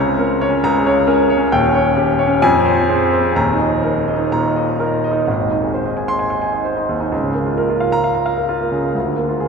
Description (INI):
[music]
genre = classical, virtuoso piano study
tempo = 129 BPM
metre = 4/4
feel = uneven beats, rubato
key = Ab major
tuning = A4 = 442 Hz
[part]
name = warm baby grand piano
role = solo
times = 0.0-9.5 s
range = Eb1 to C6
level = -14 LUFS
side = equal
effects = none
[sound]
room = wet cathedral reverb, RT60 5.0 s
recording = none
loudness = -14 LUFS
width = side -5 dB against mid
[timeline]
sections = 0.0-5.3 A section; 5.3-9.5 B section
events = none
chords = 0.0 Bbm/Db; 1.5 Eb7; 2.4 Fm; 3.4 Eb5; 5.3 Ab; 7.1 Bbm/Db; 8.9 Bb7/D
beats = 0.19 0.63 1.07 | 1.52 1.97 2.42 2.89 | 3.36 3.85 4.33 4.80 | 5.28 5.74 6.21 6.66 | 7.12 7.58 8.04 8.49 | 8.95 9.40